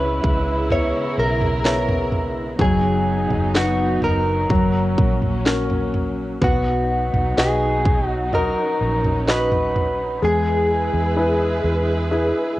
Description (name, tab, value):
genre	pop ballad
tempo	63 BPM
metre	4/4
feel	straight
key	B major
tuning	A4 = 440 Hz
part	direct-recorded clean electric guitar	melody	0.0-12.6 s	F#4 to C#5	-23 LUFS	equal	cassette tape, plate reverb
part	warm concert grand piano	accompaniment	0.0-12.6 s	F#3 to E5	-23 LUFS	left 2 dB	cassette tape, plate reverb
part	warm studio string section	sustained chords	0.0-12.6 s	C#3 to B4	-26 LUFS	right 2 dB	cassette tape, plate reverb
part	vintage muted fingered electric bass	bass	0.0-12.3 s	F#1 to E2	-24 LUFS	equal	none
part	house drum kit	drums	0.2-10.0 s	kick drum, snare drum, toms	-22 LUFS	equal	cassette tape
room	moderate studio reverb, RT60 0.7 s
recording	home recording on cassette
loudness	-17 LUFS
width	side -16 dB against mid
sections	0.0-12.6 A section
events	none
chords	0.0 C#m7; 2.6 B/F#; 4.5 F#; 6.4 B; 10.2 E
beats	0.71 1.65 | 2.59 3.54 4.50 5.46 | 6.42 7.38 8.33 9.28 | 10.22 11.17 12.11